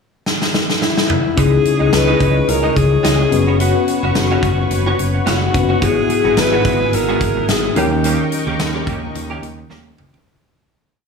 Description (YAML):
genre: 1980s-style pop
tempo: 108 BPM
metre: 4/4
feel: swing 55% on 16ths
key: unclear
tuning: A4 = 440 Hz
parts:
  - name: big rock drum kit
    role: drums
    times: 0.3-10.3 s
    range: hi-hat, kick drum, snare drum, tambourine, toms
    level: -19 LUFS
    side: equal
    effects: gated reverb
  - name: bright alto saxophone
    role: melody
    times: 0.8-8.3 s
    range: E4 to B4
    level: -19 LUFS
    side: left 2 dB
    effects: tape echo
  - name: mellow tine electric piano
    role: accompaniment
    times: 1.4-10.3 s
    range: G#2 to B4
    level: -19 LUFS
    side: left 5 dB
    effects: medium stereo tremolo
  - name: lush unison pad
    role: sustained chords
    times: 1.4-10.2 s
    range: G#4 to C#6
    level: -25 LUFS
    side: left 3 dB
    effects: chorus, phaser
  - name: direct-recorded clean electric guitar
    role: riff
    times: 1.4-10.3 s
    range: E3 to G4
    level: -24 LUFS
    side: right 4 dB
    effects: ensemble chorus, tape echo
  - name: modern bright fingered electric bass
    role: bass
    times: 1.4-10.2 s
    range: F#1 to D#2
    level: -20 LUFS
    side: right 1 dB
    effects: none
room: light reverb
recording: small room reverb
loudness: -13 LUFS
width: side -5 dB against mid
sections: 0.0-1.4 pickup bar; 1.4-10.3 pre-chorus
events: drum fill 0.3-1.4, 9.7-10.3; fade-out 8.0-10.3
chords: 0.0 N.C.; 1.4 C#madd9; 3.3 F#sus4; 5.8 Eadd9/G#; 7.8 D#7